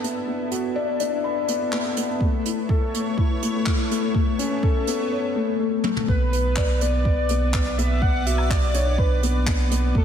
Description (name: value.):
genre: piano and strings electronica.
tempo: 124 BPM.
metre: 4/4.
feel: straight.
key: B minor.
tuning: A4 = 445 Hz.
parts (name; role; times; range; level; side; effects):
lush unison pad; sustained chords; 0.0-10.0 s; B3 to D5; -33 LUFS; right 1 dB; chorus, sidechain pumping.
felt-muted upright piano; riff; 0.0-10.0 s; A3 to B5; -24 LUFS; left 3 dB; tape echo.
round analog bass; bass; 0.0-10.0 s; A1 to B1; -23 LUFS; right 1 dB; sidechain pumping, high-pass filter.
jazz brush drum kit; drums; 0.0-9.8 s; handclaps, hi-hat, toms, woodblock; -31 LUFS; right 1 dB; none.
electronic kick drum; drums; 2.2-10.0 s; none; -22 LUFS; right 1 dB; none.
warm velvety synth lead; melody; 6.1-10.0 s; A4 to F#5; -27 LUFS; left 1 dB; chorus, tape echo.
room: moderate lush hall reverb, RT60 1.9 s, small room ambience.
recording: dreamy mix soaked in reverb.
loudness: -20 LUFS.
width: side -8 dB against mid.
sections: 0.0-6.1 A section; 6.1-10.0 B section.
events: build-up 0.0-6.1; filter sweep on analog synth pad 0.0-6.1; drum fill 5.8; drop 6.1-10.0.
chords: 0.0 Bm; 2.2 Aadd9; 6.1 Bm.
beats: | 0.28 0.76 1.25 1.73 | 2.21 2.70 3.18 3.66 | 4.15 4.63 5.12 5.60 | 6.08 6.57 7.05 7.54 | 8.02 8.50 8.99 9.47 | 9.96.